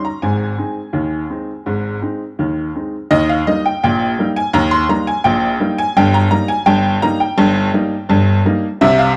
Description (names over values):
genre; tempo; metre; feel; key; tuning
ragtime piano; 84 BPM; 2/4; straight; Ab major, Eb major from 3.1 s; A4 = 440 Hz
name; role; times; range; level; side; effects
bright upright piano; solo; 0.0-9.2 s; G1 to C6; -16 LUFS; equal; none
room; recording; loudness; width
light reverb; none; -16 LUFS; mono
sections
0.0-3.1 A section; 3.1-9.2 B section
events
none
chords
0.2 Ab; 3.1 Eb; 6.0 Eb/G